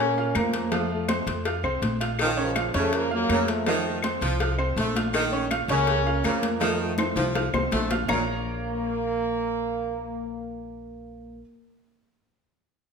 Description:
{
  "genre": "latin, salsa",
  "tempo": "163 BPM",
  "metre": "4/4",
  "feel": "straight",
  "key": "Bb harmonic minor",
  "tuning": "A4 = 439 Hz",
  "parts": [
    { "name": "clear trombone section", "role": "melody", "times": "0.0-11.4 s", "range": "Db3 to Db4", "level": "-28 LUFS", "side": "equal", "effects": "none" },
    { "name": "clear baby grand piano", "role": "accompaniment", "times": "0.0-11.4 s", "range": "F3 to F6", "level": "-30 LUFS", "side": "right 3 dB", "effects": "none" },
    { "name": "upright bass", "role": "bass", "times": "0.0-11.4 s", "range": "Bb1 to Bb2", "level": "-31 LUFS", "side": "equal", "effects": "none" },
    { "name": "congas", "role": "percussion", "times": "0.2-8.2 s", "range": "none", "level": "-32 LUFS", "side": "left 1 dB", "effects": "none" },
    { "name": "claves", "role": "percussion", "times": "0.3-8.2 s", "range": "none", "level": "-34 LUFS", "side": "left 4 dB", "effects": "none" },
    { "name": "cowbell and bongos", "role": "percussion", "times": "0.4-8.2 s", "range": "none", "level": "-32 LUFS", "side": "left 6 dB", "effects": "none" },
    { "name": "warm saxophone section", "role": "second line", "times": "2.2-8.2 s", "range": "Bb2 to A3", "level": "-29 LUFS", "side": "right 2 dB", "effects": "none" }
  ],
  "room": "wet large studio reverb, RT60 1.2 s",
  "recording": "none",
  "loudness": "-23 LUFS",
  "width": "side -6 dB against mid",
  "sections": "0.0-8.1 A section; 8.1-11.0 B section",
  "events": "drum fill 7.0-8.1",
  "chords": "0.0 Bbm; 0.7 F; 2.2 Bbm; 3.7 F7; 5.1 Bbm; 6.6 F7; 8.1 Bbm",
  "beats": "0.35 | 0.72 1.09 1.46 1.83 | 2.19 2.56 2.93 3.30 | 3.67 4.04 4.41 4.77 | 5.14 5.51 5.88 6.25 | 6.62 6.99 7.35 7.72 | 8.09 8.46 8.83 9.20 | 9.57 9.94 10.31 10.68"
}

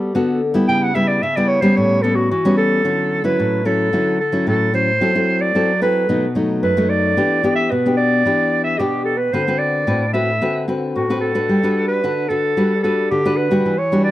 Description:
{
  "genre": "samba",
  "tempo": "111 BPM",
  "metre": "4/4",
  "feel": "straight",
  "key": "D major",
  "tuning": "A4 = 441 Hz",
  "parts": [
    { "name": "nylon-string guitar", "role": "accompaniment", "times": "0.0-14.1 s", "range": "F#2 to B4", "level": "-18 LUFS", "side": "left 1 dB", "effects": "none" },
    { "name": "clear clarinet", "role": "melody", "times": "0.7-14.1 s", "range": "F#4 to G5", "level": "-18 LUFS", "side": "right 1 dB", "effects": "none" }
  ],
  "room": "small room ambience",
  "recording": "dry, close 1970s-style studio recording",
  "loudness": "-15 LUFS",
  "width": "side -14 dB against mid",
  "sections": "0.0-2.8 A section; 2.8-14.1 B section",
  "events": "clarinet solo 0.0-2.8",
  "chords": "0.0 Gmaj9; 0.7 C#m7b5; 1.8 A9; 2.8 Dmaj9; 5.0 F#m7b5; 6.1 B7; 7.2 Em7; 9.3 D13; 11.5 Gmaj7",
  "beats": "0.15 | 0.69 1.23 1.77 2.31 | 2.85 3.39 3.93 4.47 | 5.01 5.55 6.09 6.63 | 7.17 7.71 8.25 8.79 | 9.33 9.87 10.41 10.96 | 11.49 12.04 12.57 13.12 | 13.65"
}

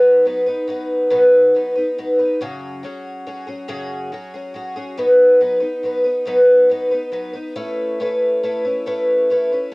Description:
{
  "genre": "rock",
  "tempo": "139 BPM",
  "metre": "3/4",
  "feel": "straight",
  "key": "B mixolydian",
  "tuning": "A4 = 441 Hz",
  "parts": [
    { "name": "picked twelve-string acoustic guitar", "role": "solo", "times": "0.0-9.7 s", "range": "F#2 to B4", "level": "-15 LUFS", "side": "equal", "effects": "none" }
  ],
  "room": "wet booth ambience, RT60 0.2 s",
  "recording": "home recording on cassette",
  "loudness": "-14 LUFS",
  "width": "side -28 dB against mid",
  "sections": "0.0-9.7 A section",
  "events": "none",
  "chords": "0.0 B; 2.4 F#sus2; 5.0 B; 7.6 Aadd9",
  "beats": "0.25 0.68 | 1.11 1.54 1.97 | 2.40 2.83 3.26 | 3.69 4.13 4.56 | 4.99 5.42 5.85 | 6.28 6.71 7.14 | 7.57 8.01 8.44 | 8.87 9.30 9.73"
}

